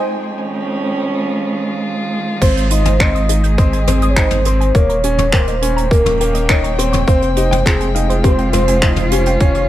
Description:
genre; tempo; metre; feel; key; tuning
piano and strings electronica; 103 BPM; 4/4; straight; Ab major; A4 = 440 Hz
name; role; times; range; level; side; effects
warm velvety synth lead; melody; 0.0-9.7 s; Ab4 to Eb5; -20 LUFS; right 1 dB; chorus
muted string quartet; sustained chords; 0.0-9.7 s; F2 to G5; -21 LUFS; right 1 dB; sidechain pumping
warbly dusty pluck; arpeggios; 2.4-9.6 s; F4 to G6; -26 LUFS; left 4 dB; chorus, sidechain pumping, digital delay
bright baby grand piano; riff; 2.4-9.6 s; Bb3 to Eb4; -22 LUFS; left 1 dB; digital delay
round analog bass; bass; 2.4-9.7 s; Eb1 to Ab1; -17 LUFS; equal; sidechain pumping
electronic kick drum; drums; 2.4-9.5 s; none; -14 LUFS; equal; none
soft brush drum kit; drums; 2.4-9.7 s; crash cymbal, finger snaps, hi-hat, toms; -21 LUFS; equal; none
room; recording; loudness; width
light reverb, small room ambience; none; -12 LUFS; side -13 dB against mid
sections
0.0-2.4 A section; 2.4-9.7 B section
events
build-up 0.0-2.4; filter sweep on string quartet 0.0-2.4; filter sweep on synth arpeggio sound 0.0-2.4; break 0.1-2.4; drop 2.4-9.7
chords
0.1 Dbadd9/F; 2.4 Ab; 4.7 Eb7; 7.1 Fmadd9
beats
| 0.09 0.67 1.25 1.83 | 2.42 3.00 3.58 4.16 | 4.75 5.33 5.91 6.49 | 7.08 7.66 8.24 8.82 | 9.41

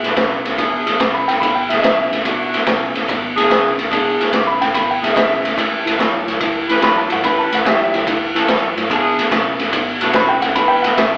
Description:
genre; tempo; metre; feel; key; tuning
electric blues shuffle; 144 BPM; 4/4; swing 68% on 8ths; E mixolydian; A4 = 440 Hz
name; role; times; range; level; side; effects
clear upright piano; second line; 0.0-11.2 s; G4 to D6; -18 LUFS; equal; none
electric guitar through a small old amp; riff; 0.0-11.2 s; E2 to F#3; -24 LUFS; equal; none
clear horn section; stabs; 0.0-11.1 s; C#4 to B4; -19 LUFS; equal; none
vintage muted fingered electric bass; bass; 0.0-11.2 s; E1 to G2; -38 LUFS; equal; none
raw garage drum kit; drums; 0.0-11.1 s; kick drum, ride cymbal, snare drum; -16 LUFS; equal; none
room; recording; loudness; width
light reverb; band playing live in one room, telephone sound; -13 LUFS; side -37 dB against mid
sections
0.0-11.2 A section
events
upright piano solo 0.0-11.2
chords
0.0 E7; 5.6 A7; 8.9 E7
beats
0.17 | 0.59 1.00 1.42 1.83 | 2.25 2.67 3.08 3.50 | 3.91 4.33 4.75 5.16 | 5.58 5.99 6.41 6.82 | 7.24 7.65 8.07 8.48 | 8.90 9.31 9.73 10.14 | 10.56 10.97

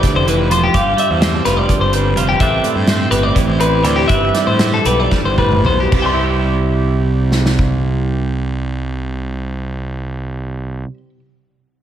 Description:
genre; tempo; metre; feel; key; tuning
math rock and midwest emo; 216-254 BPM (eighths); 7/8; straight; C major; A4 = 436 Hz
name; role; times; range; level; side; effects
twelve-string electric guitar; accompaniment; 0.0-11.2 s; G2 to B4; -19 LUFS; right 5 dB; spring reverb
twelve-string electric guitar; arpeggios; 0.0-11.0 s; G4 to C6; -17 LUFS; left 4 dB; analog delay
loose indie drum kit; drums; 0.0-7.7 s; crash cymbal, hi-hat, kick drum, snare drum, toms; -19 LUFS; equal; none
fuzz fingered electric bass; bass; 0.1-10.8 s; E1 to A2; -19 LUFS; equal; overdrive
room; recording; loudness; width
wet lush hall reverb, RT60 1.8 s, small room ambience; big arena sound; -13 LUFS; side -10 dB against mid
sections
0.0-5.9 A section; 5.9-9.8 B section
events
slowing down 2.4-5.9; drum fill 5.1-5.9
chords
0.0 Fmaj9; 0.7 G7sus4; 2.4 Cmaj7/G; 5.9 C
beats
0.04 0.27 0.51 | 0.74 0.98 1.22 1.45 1.69 1.93 2.17 | 2.40 2.64 2.88 3.12 3.36 3.60 3.84 | 4.09 4.34 4.59 4.85 5.11 5.38 5.65 | 5.92 6.20 6.48 6.76 7.04 7.31 7.59 | 7.87 8.15 8.42 8.70 8.98 9.26 9.54

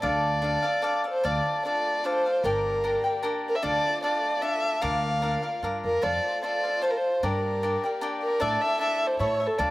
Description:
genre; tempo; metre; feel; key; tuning
mexican folk, mariachi; 151 BPM; 3/4; swing 53% on 8ths; D minor; A4 = 440 Hz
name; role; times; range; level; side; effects
dark violin; melody; 0.0-9.7 s; A4 to F5; -26 LUFS; equal; none
cavaquinho; accompaniment; 0.0-9.7 s; D4 to G5; -28 LUFS; left 1 dB; slapback echo
upright bass; bass; 0.0-9.7 s; G1 to A2; -32 LUFS; equal; none
warm chamber violin section; sustained chords; 1.2-9.7 s; A3 to D5; -39 LUFS; equal; none
room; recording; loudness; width
little or no reverb; recorded outdoors, with no room sound; -24 LUFS; side -18 dB against mid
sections
0.0-1.2 A section; 1.2-9.7 A section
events
none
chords
0.0 Dm; 2.4 Gm; 3.6 Dm; 4.8 Bb/D; 6.0 F; 7.2 Gm; 8.4 Asus4; 9.2 A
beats
| 0.03 0.43 0.84 | 1.25 1.65 2.05 | 2.44 2.84 3.23 | 3.63 4.02 4.42 | 4.81 5.21 5.62 | 6.02 6.42 6.82 | 7.22 7.62 8.01 | 8.40 8.80 9.20 | 9.59

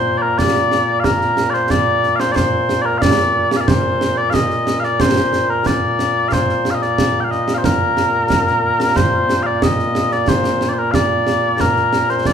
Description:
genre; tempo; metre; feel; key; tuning
scottish traditional, Scottish pipe music; 91 BPM; 4/4; straight; Bb major; A4 = 440 Hz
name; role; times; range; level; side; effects
mellow small bagpipes; melody; 0.0-12.3 s; Bb2 to G5; -15 LUFS; left 1 dB; none
concert snare drum and concert bass drum; drums; 0.4-12.3 s; none; -19 LUFS; right 2 dB; none
room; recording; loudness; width
wet large studio reverb, RT60 1.1 s; band playing live in one room; -14 LUFS; side -8 dB against mid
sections
0.0-12.3 A section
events
none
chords
none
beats
0.39 | 1.04 1.71 2.36 3.02 | 3.68 4.34 5.00 5.66 | 6.32 6.98 7.64 8.30 | 8.96 9.62 10.28 10.94 | 11.60 12.25

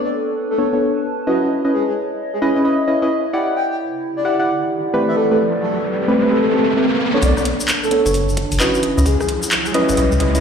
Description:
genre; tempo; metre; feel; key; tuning
UK garage, two-step garage; 131 BPM; 4/4; swing 64% on 16ths; unclear; A4 = 440 Hz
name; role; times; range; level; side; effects
breathy flute-like synth lead; melody; 0.0-9.8 s; F#4 to G5; -23 LUFS; left 1 dB; wide subtle chorus, ping-pong delay
deep mellow chord stab; stabs; 0.0-10.4 s; A3 to F#5; -18 LUFS; equal; chorus, cassette tape, ping-pong delay
warbly tape-like pad; texture; 0.0-10.4 s; C4 to B5; -24 LUFS; equal; chorus, built-in reverb, sidechain pumping
riser; sound effects; 4.2-10.4 s; none; -24 LUFS; right 1 dB; none
saturated sub bass; bass; 7.2-10.4 s; F#1 to C#2; -17 LUFS; equal; none
electronic kick drum; drums; 7.2-10.3 s; none; -30 LUFS; equal; none
garage drum kit; drums; 7.2-10.4 s; handclaps, hi-hat, rim click; -21 LUFS; equal; overdrive, high-pass filter on hats, small room ambience, high-pass filter on snare
tube shaker; percussion; 7.2-10.4 s; none; -29 LUFS; left 4 dB; none
room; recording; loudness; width
moderate lush hall reverb, RT60 2.1 s; played on a big sound system in a bare room, large studio reverb; -15 LUFS; side -7 dB against mid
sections
0.0-7.2 A section; 7.2-10.4 B section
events
riser 4.2-7.2, 7.2-10.4; build-up 7.2-10.4; filter sweep 7.2-10.4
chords
0.0 Bm9; 1.5 C#m9; 3.3 Em9; 5.2 Am9; 7.2 Bm9; 8.8 C#m9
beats
0.35 0.81 1.27 | 1.73 2.19 2.65 3.10 | 3.56 4.02 4.48 4.93 | 5.39 5.85 6.31 6.77 | 7.22 7.68 8.14 8.60 | 9.06 9.52 9.97

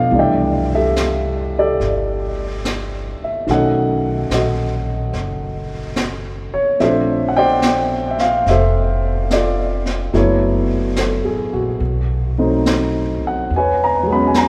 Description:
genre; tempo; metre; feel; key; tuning
jazz ballad; 72 BPM; 4/4; swing 68% on 8ths; unclear; A4 = 443 Hz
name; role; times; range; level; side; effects
warm upright piano; accompaniment; 0.0-14.5 s; D#3 to B5; -19 LUFS; equal; none
upright bass; bass; 0.0-14.5 s; F1 to E2; -24 LUFS; equal; none
vintage brush drum kit; drums; 0.1-14.5 s; brushed snare drum, hi-hat, snare drum; -28 LUFS; equal; none
room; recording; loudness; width
wet cathedral reverb, RT60 5.7 s; recorded in a church or concert hall; -18 LUFS; mono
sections
0.1-14.5 A section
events
none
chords
0.1 C69; 3.5 B9; 6.8 Bbmaj9#11; 10.1 F#m7; 11.8 B7b9; 13.5 E6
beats
| 0.12 0.96 1.80 2.64 | 3.47 4.30 5.13 5.97 | 6.80 7.63 8.46 9.30 | 10.13 10.97 11.81 12.65 | 13.50 14.34

